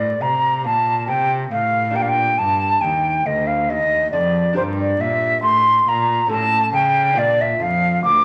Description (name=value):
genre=classical, baroque-style sonata movement with continuo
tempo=69 BPM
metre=3/4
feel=straight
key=G minor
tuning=A4 = 441 Hz
part: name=hollow concert flute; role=melody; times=0.0-8.2 s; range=C5 to D6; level=-19 LUFS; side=equal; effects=none
part: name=lute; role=accompaniment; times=0.0-8.2 s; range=D2 to D5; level=-31 LUFS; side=equal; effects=none
part: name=rich cello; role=bass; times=0.0-8.2 s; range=D2 to C#3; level=-27 LUFS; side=equal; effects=none
room=moderate large studio reverb, RT60 1.5 s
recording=vinyl crackle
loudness=-18 LUFS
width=mono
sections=0.0-8.2 A section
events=none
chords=0.0 Gm; 4.6 Gm69; 6.3 A7; 7.2 Bb